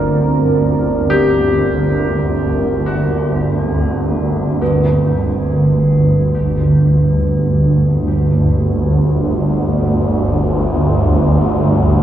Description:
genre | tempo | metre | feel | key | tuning
dark ambient drone | free time | none | none | unclear | A4 = 441 Hz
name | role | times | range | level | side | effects
deep dark ambient pad | sustained chords | 0.0-4.6 s | C4 to D5 | -20 LUFS | right 3 dB | chorus, built-in reverb
bright grand piano | arpeggios | 0.0-12.0 s | F3 to G4 | -22 LUFS | left 4 dB | tape echo
swarming drone | drone | 0.0-12.0 s | G1 to D2 | -13 LUFS | right 1 dB | built-in reverb
bronze singing bowl | texture | 0.0-12.0 s | B4 to C5 | -27 LUFS | right 1 dB | none
room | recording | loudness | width
wet cathedral reverb, RT60 6.1 s | in a vast, echoing space, cassette tape | -12 LUFS | side -11 dB against mid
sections
0.0-4.6 A section; 4.6-12.0 B section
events
none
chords
0.0 Bbadd9; 4.6 G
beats
free time

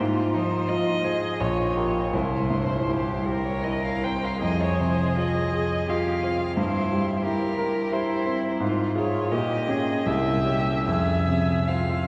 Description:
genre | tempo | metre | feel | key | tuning
classical, slow romantic movement for piano trio | 73-90 BPM | 3/4 | rubato | F minor | A4 = 441 Hz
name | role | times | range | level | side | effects
clear cello | second line | 0.0-12.1 s | Eb4 to C5 | -33 LUFS | equal | none
clear concert grand piano | accompaniment | 0.0-12.1 s | Bb1 to C5 | -27 LUFS | equal | none
warm violin | melody | 0.3-12.1 s | Bb4 to G5 | -31 LUFS | equal | none
room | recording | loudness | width
wet cathedral reverb, RT60 5.9 s | heard from further back in the room | -25 LUFS | mono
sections
0.0-12.1 A section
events
none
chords
0.0 Fm/Ab; 1.4 Gdim/Bb; 2.1 C; 4.4 Fm; 6.6 C7/G; 8.6 Fm/Ab; 9.3 Gdim/Bb; 10.1 C; 10.9 Fm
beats
| 0.00 0.69 1.40 | 2.13 2.88 3.65 | 4.42 5.17 5.89 | 6.58 7.26 7.93 | 8.61 9.32 10.07 | 10.87 11.68

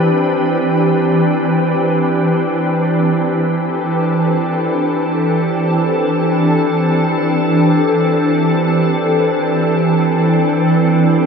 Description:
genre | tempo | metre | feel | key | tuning
ambient | free time | none | none | unclear | A4 = 440 Hz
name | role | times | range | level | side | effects
soft additive organ-like pad | solo | 0.0-11.3 s | E3 to B4 | -12 LUFS | equal | ensemble chorus, built-in reverb
room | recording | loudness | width
wet concert hall reverb, RT60 2.3 s | dark, warm production | -13 LUFS | side -6 dB against mid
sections
0.0-11.3 A section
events
none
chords
0.0 Cmaj9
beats
free time

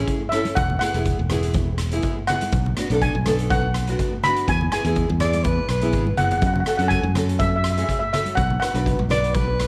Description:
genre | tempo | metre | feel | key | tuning
calypso | 123 BPM | 4/4 | swing 54% on 16ths | unclear | A4 = 439 Hz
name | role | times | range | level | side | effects
steel pan | melody | 0.0-9.1 s | E5 to B5 | -27 LUFS | equal | none
nylon-string guitar | accompaniment | 0.0-9.5 s | B3 to B4 | -29 LUFS | equal | double-tracked
fingered electric bass | bass | 0.0-9.7 s | E1 to F#2 | -25 LUFS | equal | none
street-band drum kit | drums | 0.1-9.7 s | hi-hat, kick drum, rim click | -28 LUFS | equal | none
congas | percussion | 0.5-9.5 s | none | -33 LUFS | equal | none
breathy alto saxophone | second line | 5.2-6.0, 9.1-9.7 s | B4 to D5 | -27 LUFS | equal | none
room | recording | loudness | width
light reverb, studio reverb | none | -21 LUFS | mono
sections
0.0-9.7 A section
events
drum fill 5.9-6.4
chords
0.0 Amaj7; 0.6 Eadd9; 2.5 Bm; 4.5 E; 6.4 F#madd9; 8.4 Bm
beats
0.08 | 0.57 1.06 1.54 2.03 | 2.52 3.01 3.50 3.98 | 4.47 4.96 5.45 5.93 | 6.42 6.91 7.40 7.88 | 8.37 8.86 9.34

